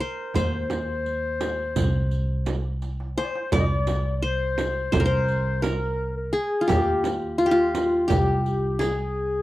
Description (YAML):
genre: Turkish makam ensemble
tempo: 170 BPM (eighths)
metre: 9/8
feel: straight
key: C makam ussak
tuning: A4 = 440 Hz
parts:
  - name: qanun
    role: melody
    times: 0.0-9.4 s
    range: F4 to D5-30c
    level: -26 LUFS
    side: left 1 dB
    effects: none
  - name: dark clarinet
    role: second line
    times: 0.0-9.4 s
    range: F4 to Eb5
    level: -29 LUFS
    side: left 3 dB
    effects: none
  - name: darbuka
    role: percussion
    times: 0.0-9.2 s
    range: none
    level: -30 LUFS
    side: right 1 dB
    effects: none
  - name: riq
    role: percussion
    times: 0.0-9.0 s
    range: none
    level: -38 LUFS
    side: right 7 dB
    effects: none
  - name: frame drum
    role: percussion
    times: 0.3-9.0 s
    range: none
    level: -29 LUFS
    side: right 3 dB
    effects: none
  - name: upright bass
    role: bass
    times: 0.4-9.4 s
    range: C2 to Eb2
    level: -27 LUFS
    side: equal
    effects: none
room: moderate booth ambience, RT60 0.2 s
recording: dry, close 1970s-style studio recording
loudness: -22 LUFS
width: side -16 dB against mid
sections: 0.0-3.5 A section; 3.5-9.4 A section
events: drum fill 2.8-3.5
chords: none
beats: 0.00 | 0.35 0.71 1.06 1.41 1.76 2.12 2.47 2.82 3.17 | 3.53 3.88 4.23 4.58 4.93 5.29 5.64 5.99 6.34 | 6.70 7.05 7.40 7.75 8.11 8.46 8.81 9.16